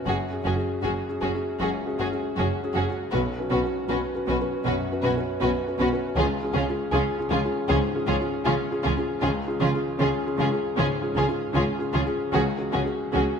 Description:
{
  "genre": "cinematic",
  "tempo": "78 BPM",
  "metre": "4/4",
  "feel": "rubato",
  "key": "unclear",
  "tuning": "A4 = 440 Hz",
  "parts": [
    { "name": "felt-muted upright piano", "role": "accompaniment", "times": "0.0-13.4 s", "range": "B1 to B4", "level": "-28 LUFS", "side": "left 1 dB", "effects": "none" },
    { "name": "warm studio cello section", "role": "bass", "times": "0.0-13.2 s", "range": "Gb2 to Db3", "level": "-30 LUFS", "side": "right 2 dB", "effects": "none" },
    { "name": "warm studio violin section", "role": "melody", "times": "0.1-13.2 s", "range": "Ab4 to B4", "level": "-31 LUFS", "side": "left 2 dB", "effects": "none" },
    { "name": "rich studio violin section", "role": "second line", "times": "0.1-13.2 s", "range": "F4 to Gb4", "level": "-32 LUFS", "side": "left 2 dB", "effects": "none" },
    { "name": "rich studio viola section", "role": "accompaniment", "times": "0.1-13.2 s", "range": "Db4", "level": "-33 LUFS", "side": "right 1 dB", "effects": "none" },
    { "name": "rich studio double bass section", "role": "bass", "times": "0.1-13.2 s", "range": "Gb1 to Db2", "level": "-31 LUFS", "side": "right 2 dB", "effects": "none" }
  ],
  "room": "moderate scoring stage reverb, RT60 1.7 s",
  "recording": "minimal, uncompressed stereo recording",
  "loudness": "-23 LUFS",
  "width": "side -6 dB against mid",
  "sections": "0.0-13.4 A section",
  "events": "none",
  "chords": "0.1 Gbsus2; 3.1 Bsus2; 6.2 Db; 12.3 Gbsus2/Db",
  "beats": "| 0.06 0.83 1.61 2.38 | 3.13 3.89 4.65 5.41 | 6.16 6.92 7.68 8.46 | 9.22 9.99 10.78 11.55 | 12.34 13.14"
}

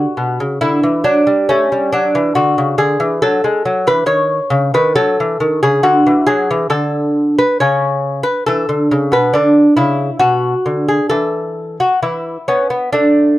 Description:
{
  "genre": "classical, baroque-style dance for lute",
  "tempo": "68 BPM",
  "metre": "4/4",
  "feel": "rubato",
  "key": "unclear",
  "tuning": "A4 = 440 Hz",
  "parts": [
    { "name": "lute", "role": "solo", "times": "0.0-13.4 s", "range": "B2 to C#5", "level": "-12 LUFS", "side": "equal", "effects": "none" }
  ],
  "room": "studio ambience",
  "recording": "dry, close 1970s-style studio recording",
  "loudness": "-12 LUFS",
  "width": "side -16 dB against mid",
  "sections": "0.0-13.4 A section",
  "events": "none",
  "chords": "0.0 D; 2.4 Dadd9(#11); 4.1 C#sus4; 5.8 Dadd9; 7.6 B7sus2; 9.3 Bm; 11.1 N.C.; 12.0 E5",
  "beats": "0.60 1.49 | 2.36 3.23 4.10 4.96 | 5.83 6.71 7.59 8.47 | 9.34 10.21 11.11 12.03 | 12.97"
}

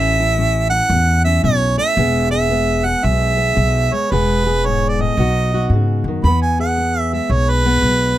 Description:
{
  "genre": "acoustic country blues, solo or duo",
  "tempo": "113 BPM",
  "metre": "4/4",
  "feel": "swing 64% on 8ths",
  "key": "E major",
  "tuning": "A4 = 440 Hz",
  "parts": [
    { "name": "clear harmonica", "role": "melody", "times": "0.0-8.2 s", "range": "B4 to B5", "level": "-18 LUFS", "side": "right 3 dB", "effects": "none" },
    { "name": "fingerpicked steel-string acoustic guitar", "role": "accompaniment", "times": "0.0-8.2 s", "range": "E2 to G#4", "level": "-22 LUFS", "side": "left 3 dB", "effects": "none" },
    { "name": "upright bass", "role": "bass", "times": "0.0-8.1 s", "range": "E1 to G#2", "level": "-17 LUFS", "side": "equal", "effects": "none" }
  ],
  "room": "little or no reverb",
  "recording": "close, detailed microphones",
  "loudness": "-14 LUFS",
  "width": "side -13 dB against mid",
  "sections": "0.0-6.2 A section; 6.2-8.2 B section",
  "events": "harmonica solo 6.2-8.2",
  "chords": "0.0 A; 2.0 E; 5.2 B; 6.2 E",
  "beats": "0.38 0.92 1.45 | 1.98 2.51 3.05 3.58 | 4.11 4.64 5.17 5.71 | 6.24 6.77 7.30 7.84"
}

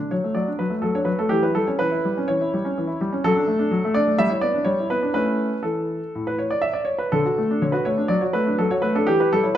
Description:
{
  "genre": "classical-period piano sonatina",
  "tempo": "124 BPM",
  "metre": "4/4",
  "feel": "rubato",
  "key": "D major",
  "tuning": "A4 = 439 Hz",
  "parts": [
    { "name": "clear grand piano", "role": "solo", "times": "0.0-9.6 s", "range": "A2 to E5", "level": "-19 LUFS", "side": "equal", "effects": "none" }
  ],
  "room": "wet recital hall reverb, RT60 1.3 s",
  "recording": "dark, warm production",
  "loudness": "-19 LUFS",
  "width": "side -11 dB against mid",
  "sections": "0.0-9.6 A section",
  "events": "none",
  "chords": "0.3 D/F#; 1.3 C#dim/E; 3.2 D/F#; 4.2 Em7/G; 5.2 A; 7.1 D; 8.1 D/F#",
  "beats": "0.34 0.83 | 1.31 1.79 2.27 2.75 | 3.23 3.70 4.17 4.66 | 5.15 5.64 6.14 6.63 | 7.13 7.62 8.10 8.60 | 9.08 9.56"
}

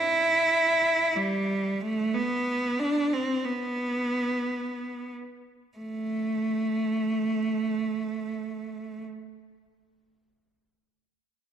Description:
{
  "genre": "rock",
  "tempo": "free time",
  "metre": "none",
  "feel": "none",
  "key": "A minor",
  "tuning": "A4 = 440 Hz",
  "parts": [
    { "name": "clear cello", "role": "melody", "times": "0.0-9.0 s", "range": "G3 to E4", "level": "-25 LUFS", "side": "right 1 dB", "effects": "slapback echo" }
  ],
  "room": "moderate concert hall reverb, RT60 2.1 s",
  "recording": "none",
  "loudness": "-25 LUFS",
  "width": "side -9 dB against mid",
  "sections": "0.0-5.8 A section; 5.8-9.7 B section",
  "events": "none",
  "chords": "none",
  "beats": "free time"
}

